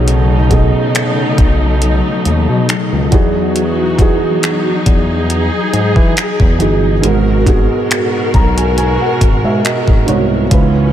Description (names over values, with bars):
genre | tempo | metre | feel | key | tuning
contemporary R&B | 69 BPM | 4/4 | swing 54% on 16ths | unclear | A4 = 442 Hz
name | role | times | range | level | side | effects
felt-muted upright piano | accompaniment | 0.0-10.9 s | G#2 to A#5 | -16 LUFS | right 3 dB | none
warm studio string section | sustained chords | 0.0-10.9 s | B2 to A#4 | -17 LUFS | left 2 dB | sidechain pumping
smooth synth bass | bass | 0.0-10.9 s | G1 to E3 | -15 LUFS | equal | none
detuned 8-bit digital drum machine | drums | 0.1-10.7 s | finger snaps, hi-hat, kick drum | -14 LUFS | equal | overdrive
room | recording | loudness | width
moderate cathedral reverb, RT60 5.7 s | dreamy mix soaked in reverb | -10 LUFS | side -11 dB against mid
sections
0.0-10.9 A section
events
felt piano fill 7.9-10.5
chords
0.0 B13; 3.1 Emaj9; 7.0 G#m9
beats
| 0.08 0.95 1.82 2.69 | 3.56 4.43 5.30 6.17 | 7.04 7.90 8.77 9.64 | 10.51